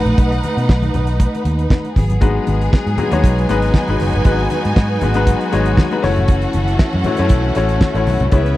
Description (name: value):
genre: disco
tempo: 118 BPM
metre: 4/4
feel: straight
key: unclear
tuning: A4 = 438 Hz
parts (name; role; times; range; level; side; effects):
- clear studio string section; second line; 0.0-8.6 s; C#4 to G#5; -24 LUFS; right 2 dB; slapback echo
- warm studio string section; sustained chords; 0.0-8.6 s; C#3 to B4; -23 LUFS; equal; none
- fingered electric bass; bass; 0.0-8.5 s; F#1 to B2; -18 LUFS; equal; none
- damped 70s drum kit; drums; 0.1-8.6 s; hi-hat, kick drum, snare drum; -13 LUFS; equal; none
- congas; percussion; 0.1-8.6 s; none; -25 LUFS; left 2 dB; none
- bright concert grand piano; accompaniment; 2.2-8.6 s; G#3 to C#5; -19 LUFS; left 5 dB; none
room: little or no reverb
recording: dry, close 1970s-style studio recording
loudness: -13 LUFS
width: side -16 dB against mid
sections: 0.0-8.6 A section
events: none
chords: 0.0 B7; 2.0 G#m7; 6.0 F#m7